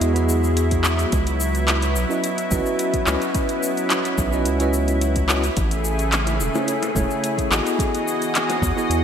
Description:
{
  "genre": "sunset chillout",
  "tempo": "108 BPM",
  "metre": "4/4",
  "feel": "straight",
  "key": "C# minor",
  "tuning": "A4 = 438 Hz",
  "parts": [
    { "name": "tine electric piano", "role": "accompaniment", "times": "0.0-9.0 s", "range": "A3 to D#5", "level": "-24 LUFS", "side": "moving between left 3 dB and right 4 dB", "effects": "medium tremolo, auto-pan, ping-pong delay" },
    { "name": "lush unison pad", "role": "sustained chords", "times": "0.0-9.0 s", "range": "C#3 to D#5", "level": "-24 LUFS", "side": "equal", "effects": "chorus" },
    { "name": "round analog bass", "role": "bass", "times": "0.0-9.0 s", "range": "E1 to E2", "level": "-22 LUFS", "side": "equal", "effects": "none" },
    { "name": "deep house drum kit", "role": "drums", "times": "0.0-9.0 s", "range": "handclaps, hi-hat, shaker", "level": "-25 LUFS", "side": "left 1 dB", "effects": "overdrive" },
    { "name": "electronic kick drum", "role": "drums", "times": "0.7-8.7 s", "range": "none", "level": "-25 LUFS", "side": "equal", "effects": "overdrive" },
    { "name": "bongos", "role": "percussion", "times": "6.3-8.6 s", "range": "none", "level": "-31 LUFS", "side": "left 4 dB", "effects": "none" }
  ],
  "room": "moderate lush hall reverb, RT60 1.9 s, digital ambience",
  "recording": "bright 1980s-style digital production",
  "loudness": "-18 LUFS",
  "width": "side -8 dB against mid",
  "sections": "0.0-9.0 A section",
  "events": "none",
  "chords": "0.0 Emaj9; 1.1 C#m11; 5.6 Amaj7; 7.8 Emaj9",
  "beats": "0.01 0.57 | 1.13 1.68 2.24 2.79 | 3.35 3.90 4.46 5.01 | 5.57 6.13 6.68 7.24 | 7.79 8.35 8.90"
}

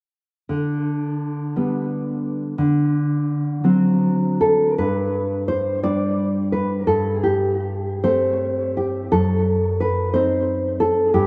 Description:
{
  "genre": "romantic piece for solo classical guitar",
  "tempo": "48-60 BPM (dotted quarters)",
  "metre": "6/8",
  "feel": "rubato",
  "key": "G major",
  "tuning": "A4 = 440 Hz",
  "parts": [
    { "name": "nylon-string guitar", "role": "solo", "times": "0.5-11.3 s", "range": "F#2 to D5", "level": "-21 LUFS", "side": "equal", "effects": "subtle chorus, diffuse ambient delay" }
  ],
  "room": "wet plate reverb, RT60 3.0 s",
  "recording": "dreamy mix soaked in reverb",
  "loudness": "-21 LUFS",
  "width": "mono",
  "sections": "0.5-4.8 A section; 4.8-11.3 B section",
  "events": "none",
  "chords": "0.5 G/D; 2.6 D7; 4.8 G; 6.9 Am7/G; 9.1 F#dim7",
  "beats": "| 0.49 1.56 | 2.58 3.63 | 4.79 5.84 | 6.87 8.04 | 9.12 10.13 | 11.14"
}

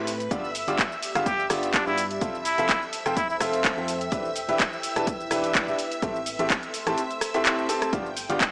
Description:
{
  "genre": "piano house",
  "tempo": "126 BPM",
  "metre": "4/4",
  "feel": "swing 55% on 16ths",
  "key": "A minor",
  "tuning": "A4 = 440 Hz",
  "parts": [
    { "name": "string machine, violins", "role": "sustained chords", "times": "0.0-8.5 s", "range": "B4 to G6", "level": "-37 LUFS", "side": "equal", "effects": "ensemble chorus, sidechain pumping" },
    { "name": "bright upright piano", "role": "riff", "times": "0.0-8.4 s", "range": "G2 to A5", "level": "-31 LUFS", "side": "equal", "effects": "vintage 12-bit sampler grit, sidechain pumping" },
    { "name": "organ-like FM bass", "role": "bass", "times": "0.0-8.4 s", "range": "E1 to A2", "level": "-42 LUFS", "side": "equal", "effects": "tube saturation, sidechain pumping" },
    { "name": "deep dark ambient pad", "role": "texture", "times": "0.2-8.5 s", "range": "E4 to C6", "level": "-38 LUFS", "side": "equal", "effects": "chorus, built-in reverb, sidechain pumping" },
    { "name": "house drum kit", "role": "drums", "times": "0.1-8.5 s", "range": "cabasa, handclaps, hi-hat, rim click", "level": "-29 LUFS", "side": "equal", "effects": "studio reverb" },
    { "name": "electronic kick drum", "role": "drums", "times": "0.3-8.5 s", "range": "none", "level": "-33 LUFS", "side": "equal", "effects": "overdrive, studio reverb" },
    { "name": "trumpet with straight mute", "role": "melody", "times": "1.3-3.4 s", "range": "D4 to G4", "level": "-30 LUFS", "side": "equal", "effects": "none" }
  ],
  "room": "moderate lush hall reverb, RT60 1.6 s",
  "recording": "dry, gritty hardware recording, small speaker sound",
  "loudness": "-26 LUFS",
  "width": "mono",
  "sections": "0.0-8.5 A section",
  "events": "none",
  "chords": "0.3 G7; 2.2 Fmaj7; 4.1 Em7; 5.8 Am7; 7.9 G7",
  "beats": "| 0.31 0.79 1.26 1.74 | 2.21 2.69 3.17 3.64 | 4.12 4.59 5.07 5.55 | 6.02 6.50 6.98 7.45 | 7.93 8.40"
}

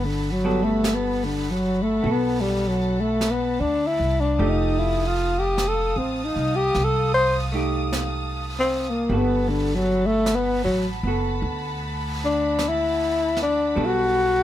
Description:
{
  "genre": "jazz ballad",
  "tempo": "51 BPM",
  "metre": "4/4",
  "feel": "swing 66% on 8ths",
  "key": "G major",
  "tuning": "A4 = 440 Hz",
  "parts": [
    { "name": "breathy tenor saxophone", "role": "melody", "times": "0.0-14.4 s", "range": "D3 to C5", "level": "-21 LUFS", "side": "left 2 dB", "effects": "none" },
    { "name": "dark studio string section", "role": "sustained chords", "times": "0.0-14.4 s", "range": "F5 to Eb6", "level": "-33 LUFS", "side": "equal", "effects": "none" },
    { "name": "upright bass", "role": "bass", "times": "0.0-14.4 s", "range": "F1 to D2", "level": "-27 LUFS", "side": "right 1 dB", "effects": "none" },
    { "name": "vintage hollow-body jazz guitar", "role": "accompaniment", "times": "0.4-14.4 s", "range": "F3 to A4", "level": "-29 LUFS", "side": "right 2 dB", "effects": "none" },
    { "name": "jazz brush drum kit", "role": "drums", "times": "0.8-14.4 s", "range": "brushed snare drum, hi-hat, snare drum", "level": "-34 LUFS", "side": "right 2 dB", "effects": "none" }
  ],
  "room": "light reverb",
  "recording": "none",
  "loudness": "-20 LUFS",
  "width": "side -12 dB against mid",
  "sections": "0.0-14.4 A section",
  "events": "tenor saxophone solo 0.0-14.4",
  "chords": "0.0 Gmaj9; 4.4 F9; 9.1 Gmaj9",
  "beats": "0.84 2.03 3.21 | 4.39 5.57 6.75 7.93 | 9.10 10.27 11.43 12.60 | 13.77"
}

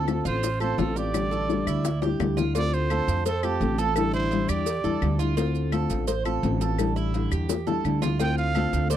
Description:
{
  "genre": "latin, Cuban son and guajira",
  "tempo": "170 BPM",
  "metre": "4/4",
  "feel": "straight",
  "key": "D minor",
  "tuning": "A4 = 440 Hz",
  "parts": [
    { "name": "breathy trumpet", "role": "melody", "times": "0.0-5.2, 8.2-9.0 s", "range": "G4 to G5", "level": "-29 LUFS", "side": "right 4 dB", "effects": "none" },
    { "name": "nylon-string guitar", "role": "accompaniment", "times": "0.0-8.9 s", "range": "D3 to F4", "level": "-28 LUFS", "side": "left 6 dB", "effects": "none" },
    { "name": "Cuban tres", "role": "arpeggios", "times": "0.0-9.0 s", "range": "E4 to C5", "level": "-32 LUFS", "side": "right 9 dB", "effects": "none" },
    { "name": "upright bass", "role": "bass", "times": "0.0-9.0 s", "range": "A1 to F2", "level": "-27 LUFS", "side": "right 1 dB", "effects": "none" },
    { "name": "bongos and cowbell", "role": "percussion", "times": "0.1-9.0 s", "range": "none", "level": "-32 LUFS", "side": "left 11 dB", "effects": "none" },
    { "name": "claves", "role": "percussion", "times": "0.1-8.7 s", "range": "none", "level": "-37 LUFS", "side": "left 21 dB", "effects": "none" },
    { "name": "maracas", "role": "percussion", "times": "0.1-9.0 s", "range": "none", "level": "-40 LUFS", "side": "right 24 dB", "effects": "none" }
  ],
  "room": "little or no reverb",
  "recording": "dry, close 1970s-style studio recording",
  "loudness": "-23 LUFS",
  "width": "side -10 dB against mid",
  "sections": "0.0-2.6 A section; 2.6-9.0 B section",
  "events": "drum fill 1.8-2.6, 7.5-8.2",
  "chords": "0.0 Dm7; 1.1 A7sus4; 2.6 Dm7; 4.0 A7sus4; 5.4 Dm7; 6.8 A7sus4; 8.2 Dm7",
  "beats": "0.08 0.43 0.79 | 1.14 1.49 1.84 2.20 | 2.55 2.90 3.26 3.61 | 3.96 4.32 4.67 5.02 | 5.37 5.73 6.08 6.43 | 6.79 7.14 7.49 7.85 | 8.20 8.55 8.91"
}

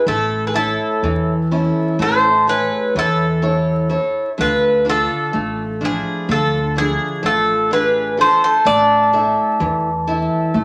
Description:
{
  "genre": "greek folk, Greek bouzouki band",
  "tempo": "126 BPM (eighths)",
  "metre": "9/8",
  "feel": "straight",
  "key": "D dorian sharp4",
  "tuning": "A4 = 436 Hz",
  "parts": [
    { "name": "Greek bouzouki", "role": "melody", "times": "0.0-10.6 s", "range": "G#4 to D5", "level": "-20 LUFS", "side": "equal", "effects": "none" },
    { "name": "mandolin", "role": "second line", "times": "0.0-10.6 s", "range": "E4 to A4", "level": "-24 LUFS", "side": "equal", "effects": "none" },
    { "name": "picked acoustic archtop guitar", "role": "accompaniment", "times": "0.1-10.6 s", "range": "D3 to E5", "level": "-23 LUFS", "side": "equal", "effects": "none" },
    { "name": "upright bass", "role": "bass", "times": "0.1-10.6 s", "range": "A1 to E2", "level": "-27 LUFS", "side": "equal", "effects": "none" }
  ],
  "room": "wet studio reverb, RT60 0.6 s",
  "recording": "vinyl crackle",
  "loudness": "-17 LUFS",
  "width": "mono",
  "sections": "0.0-10.6 A section",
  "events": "speeding up 0.0-10.6",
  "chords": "0.1 A; 4.4 Dm; 8.7 A5",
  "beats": "| 0.06 0.54 1.03 1.51 1.99 2.47 2.95 3.43 3.91 | 4.39 4.87 5.34 5.82 6.30 6.77 7.25 7.72 8.19 | 8.66 9.13 9.61 10.07 10.54"
}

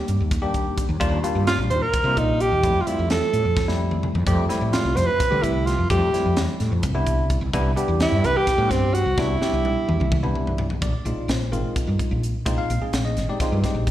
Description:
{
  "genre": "electric jazz fusion",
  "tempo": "257 BPM (eighths)",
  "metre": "7/8",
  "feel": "straight",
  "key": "unclear",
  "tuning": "A4 = 438 Hz",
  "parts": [
    { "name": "bell-like tine electric piano", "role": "accompaniment", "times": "0.0-13.9 s", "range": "G3 to F5", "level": "-27 LUFS", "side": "left 1 dB", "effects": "wide subtle chorus, slapback echo" },
    { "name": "woody fretless electric bass", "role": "bass", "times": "0.1-13.9 s", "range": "Ab1 to D3", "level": "-23 LUFS", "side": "equal", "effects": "ensemble chorus" },
    { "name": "crisp fusion drum kit", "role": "drums", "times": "0.1-13.9 s", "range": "hi-hat, kick drum, snare drum, toms", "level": "-26 LUFS", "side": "equal", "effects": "none" },
    { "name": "breathy alto saxophone", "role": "melody", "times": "1.5-10.3 s", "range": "C4 to C5", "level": "-22 LUFS", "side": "right 2 dB", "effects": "slapback echo" }
  ],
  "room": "moderate club reverb, RT60 0.6 s",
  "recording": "live gig heard through the venue's PA, recital hall reverb",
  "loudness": "-19 LUFS",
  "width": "side -12 dB against mid",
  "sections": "0.0-10.8 A section; 10.8-13.9 B section",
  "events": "drum fill 3.6-4.3, 9.2-10.8",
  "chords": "0.0 Ebmaj9; 2.6 Fmaj9; 6.8 Cmaj9; 10.8 Bb9sus4",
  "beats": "0.08 0.31 0.55 0.78 | 1.01 1.24 1.47 1.71 1.94 2.17 2.40 | 2.64 2.87 3.10 3.33 3.57 3.80 4.03 | 4.26 4.50 4.73 4.96 5.20 5.43 5.67 | 5.90 6.13 6.37 6.60 6.83 7.07 7.30 | 7.53 7.77 8.00 8.24 8.47 8.71 8.94 | 9.17 9.41 9.64 9.88 10.11 10.35 10.58 | 10.81 11.05 11.28 11.52 11.75 11.99 12.22 | 12.46 12.69 12.93 13.16 13.40 13.63 13.87"
}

